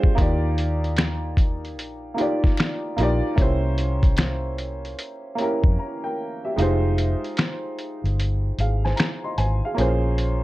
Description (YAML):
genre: lo-fi hip hop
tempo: 75 BPM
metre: 4/4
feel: swing 65% on 16ths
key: F minor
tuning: A4 = 440 Hz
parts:
  - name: warm upright piano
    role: accompaniment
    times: 0.0-10.4 s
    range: Ab3 to C6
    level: -26 LUFS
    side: right 1 dB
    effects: cassette tape
  - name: lo-fi sampler-style drum kit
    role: drums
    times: 0.0-10.4 s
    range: finger snaps, hi-hat, kick drum, snare drum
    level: -21 LUFS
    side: equal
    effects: none
  - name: vintage muted fingered electric bass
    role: bass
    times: 0.2-10.4 s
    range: F1 to F2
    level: -23 LUFS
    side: equal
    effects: none
  - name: finger snap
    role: percussion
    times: 1.0-4.4 s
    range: none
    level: -39 LUFS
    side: left 8 dB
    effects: none
room: light reverb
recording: dark, warm production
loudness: -20 LUFS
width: side -17 dB against mid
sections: 0.0-6.6 A section; 6.6-10.4 B section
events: break 5.8-6.6; kick muted 6.6-10.4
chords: 0.2 Ebmaj9; 3.4 C7b9; 6.6 Fm7; 9.8 Bbm9